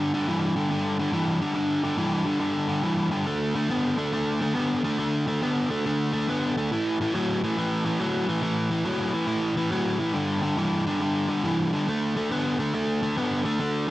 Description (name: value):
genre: blues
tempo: 140 BPM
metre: 4/4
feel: swing 66% on 8ths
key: D major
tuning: A4 = 441 Hz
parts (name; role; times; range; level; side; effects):
- biting overdriven guitar; solo; 0.0-13.9 s; G2 to B3; -23 LUFS; equal; none
room: light reverb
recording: none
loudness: -23 LUFS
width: side -16 dB against mid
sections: 0.0-13.6 A section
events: none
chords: 0.0 G5; 3.3 D5; 6.7 A5; 10.2 G5; 11.9 D5